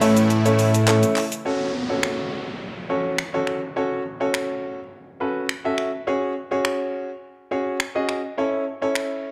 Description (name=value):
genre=dance-pop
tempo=104 BPM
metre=4/4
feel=straight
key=F# minor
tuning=A4 = 438 Hz
part: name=clear baby grand piano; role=accompaniment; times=0.0-9.3 s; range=A3 to E5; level=-25 LUFS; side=equal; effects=none
part: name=filtered supersaw swell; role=sustained chords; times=0.0-1.4 s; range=C#3 to E4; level=-29 LUFS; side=equal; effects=none
part: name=fat analog bass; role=bass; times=0.0-1.0 s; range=A2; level=-21 LUFS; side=equal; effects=none
part: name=crisp 8-bit digital drum machine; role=drums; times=0.0-9.1 s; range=finger snaps, handclaps, hi-hat, shaker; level=-29 LUFS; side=equal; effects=overdrive
part: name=group handclap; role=percussion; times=0.9-1.0 s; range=none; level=barely audible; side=none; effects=none
part: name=downlifter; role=sound effects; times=1.5-6.1 s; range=none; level=-36 LUFS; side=equal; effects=none
room=moderate concert hall reverb, RT60 1.8 s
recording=dark, warm production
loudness=-23 LUFS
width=mono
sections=0.0-1.5 A section; 1.5-9.3 B section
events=drop 0.0-1.5; break 0.3-1.5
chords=0.0 A; 1.5 F#m; 6.1 C#sus4; 8.4 A